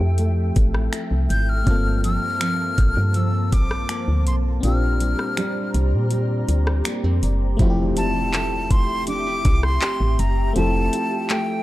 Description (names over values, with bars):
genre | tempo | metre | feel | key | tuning
contemporary R&B | 81 BPM | 4/4 | straight | F major | A4 = 440 Hz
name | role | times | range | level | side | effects
breathy bright concert flute | melody | 0.0-11.6 s | G5 to G6 | -26 LUFS | left 1 dB | none
FM electric piano | accompaniment | 0.0-11.6 s | A3 to A4 | -29 LUFS | left 2 dB | chorus
glassy FM pad | sustained chords | 0.0-11.6 s | F3 to Bb5 | -31 LUFS | left 1 dB | ensemble chorus, built-in reverb, sidechain pumping
nylon-string guitar | arpeggios | 0.0-11.6 s | G2 to G4 | -29 LUFS | right 2 dB | none
woody FM bass | bass | 0.0-10.9 s | F1 to Bb2 | -20 LUFS | equal | none
smooth R&B drum kit | drums | 0.2-11.5 s | finger snaps, handclaps, hi-hat, kick drum, rim click | -21 LUFS | equal | none
impact | sound effects | 7.6-10.6 s | none | -30 LUFS | equal | none
room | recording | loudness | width
little or no reverb | dark, warm production | -18 LUFS | side -16 dB against mid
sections
0.0-7.6 A section; 7.6-11.6 B section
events
kick muted 4.6-7.6; impact 7.6-10.6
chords
0.0 Fmaj9; 1.7 Gm11; 4.6 Bb69; 7.6 Fmaj9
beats
0.19 0.93 | 1.67 2.41 3.15 3.89 | 4.63 5.37 6.11 6.85 | 7.59 8.34 9.08 9.82 | 10.56 11.30